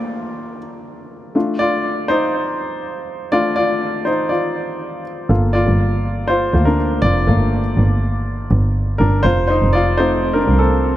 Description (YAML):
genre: piano-driven pop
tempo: 122 BPM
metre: 4/4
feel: straight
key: G minor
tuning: A4 = 440 Hz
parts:
  - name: clear baby grand piano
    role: accompaniment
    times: 0.0-11.0 s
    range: A3 to D5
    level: -18 LUFS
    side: left 1 dB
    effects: dub echo
  - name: downlifter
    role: sound effects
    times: 0.0-1.4 s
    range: none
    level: -40 LUFS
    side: right 2 dB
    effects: none
  - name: warm double bass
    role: bass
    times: 5.3-10.9 s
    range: F1 to D2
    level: -16 LUFS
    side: right 1 dB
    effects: none
room: moderate plate reverb, RT60 2.9 s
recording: echo-heavy mix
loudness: -15 LUFS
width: side -13 dB against mid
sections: 0.0-11.0 A section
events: grand piano solo 0.0-11.0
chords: 0.0 Bbmaj9/A; 1.4 Dm; 5.3 Gm7; 9.2 F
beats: 0.36 0.86 | 1.35 1.84 2.34 2.83 | 3.33 3.82 4.31 4.81 | 5.30 5.79 6.29 6.78 | 7.27 7.77 8.26 8.75 | 9.25 9.74 10.23 10.73